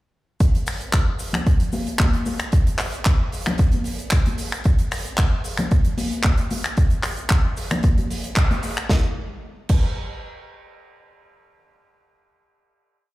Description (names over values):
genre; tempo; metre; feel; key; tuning
nu-disco; 113 BPM; 4/4; straight; none; none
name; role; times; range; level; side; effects
big rock drum kit; drums; 0.4-9.8 s; crash cymbal, finger snaps, handclaps, hi-hat, snare drum; -26 LUFS; equal; none
electronic kick drum; drums; 0.4-9.8 s; none; -18 LUFS; equal; overdrive
cabasa and congas; percussion; 0.4-8.9 s; none; -27 LUFS; left 1 dB; none
room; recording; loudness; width
small room ambience; played on a big sound system in a bare room, large studio reverb; -18 LUFS; side -18 dB against mid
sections
0.4-8.9 drop; 8.9-11.0 final hit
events
drop 0.4-8.9; band accent 8.4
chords
none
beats
| 0.40 0.94 1.47 2.00 | 2.53 3.06 3.59 4.12 | 4.65 5.18 5.71 6.25 | 6.78 7.31 7.84 8.37 | 8.90 9.43